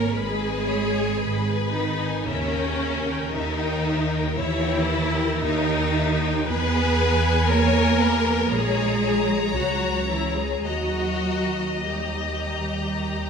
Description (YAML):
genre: classical, slow romantic movement for string orchestra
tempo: 51-60 BPM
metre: 4/4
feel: rubato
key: unclear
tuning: A4 = 440 Hz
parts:
  - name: rich symphonic violin section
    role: melody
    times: 0.0-13.3 s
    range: E5 to B5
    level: -31 LUFS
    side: left 4 dB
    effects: none
  - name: warm symphonic violin section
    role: second line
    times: 0.0-13.3 s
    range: G#4 to D#5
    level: -29 LUFS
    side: left 5 dB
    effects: none
  - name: rich symphonic viola section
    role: accompaniment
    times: 0.0-13.3 s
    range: C#4 to B4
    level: -26 LUFS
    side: left 1 dB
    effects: none
  - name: rich symphonic cello section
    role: bass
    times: 0.0-13.3 s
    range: C#3 to B3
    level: -27 LUFS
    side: right 2 dB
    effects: none
  - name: rich symphonic double bass section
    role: bass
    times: 0.1-13.3 s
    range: G#1 to E2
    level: -26 LUFS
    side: right 2 dB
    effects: none
room: wet scoring stage reverb, RT60 1.9 s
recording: minimal, uncompressed stereo recording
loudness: -21 LUFS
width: side -6 dB against mid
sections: 0.0-13.3 A section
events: none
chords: 0.0 G#m; 2.3 D#7b9; 6.5 E; 8.5 A#m7b5; 10.7 D#